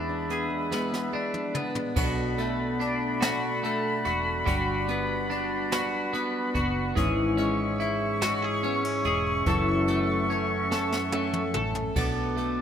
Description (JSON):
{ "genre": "six-eight pop ballad", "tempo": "48 BPM (dotted quarters)", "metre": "6/8", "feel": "straight", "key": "unclear", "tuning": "A4 = 440 Hz", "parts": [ { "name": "twelve-string electric guitar", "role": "accompaniment", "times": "0.0-12.6 s", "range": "F#2 to A4", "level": "-28 LUFS", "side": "equal", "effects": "double-tracked left and right" }, { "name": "warm woodwind section", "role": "sustained chords", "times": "0.0-12.6 s", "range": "F#4 to D6", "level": "-30 LUFS", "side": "equal", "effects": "none" }, { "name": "fingerpicked plugged-in steel-string acoustic guitar", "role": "arpeggios", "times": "0.0-12.6 s", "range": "E3 to D4", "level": "-33 LUFS", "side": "left 3 dB", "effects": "tape echo" }, { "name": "vintage muted fingered electric bass", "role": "bass", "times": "0.0-12.6 s", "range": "E1 to E2", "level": "-35 LUFS", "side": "right 1 dB", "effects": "none" }, { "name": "jazz brush drum kit", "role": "drums", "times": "0.3-12.6 s", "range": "crash cymbal, hi-hat, kick drum, snare drum, toms", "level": "-32 LUFS", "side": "right 1 dB", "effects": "none" } ], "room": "light reverb, small room ambience", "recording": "rough home demo mix", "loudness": "-24 LUFS", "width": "side -8 dB against mid", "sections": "0.0-2.0 A section; 2.0-12.0 B section", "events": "drum fill 0.7-2.0, 10.7-12.0", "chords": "0.0 E7; 2.0 Bm7; 4.5 Gmaj7; 7.0 C#m/G#; 9.5 F#m7; 12.0 Bm7", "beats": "0.71 | 1.97 3.22 | 4.47 5.72 | 6.97 8.22 | 9.46 10.71 | 11.96" }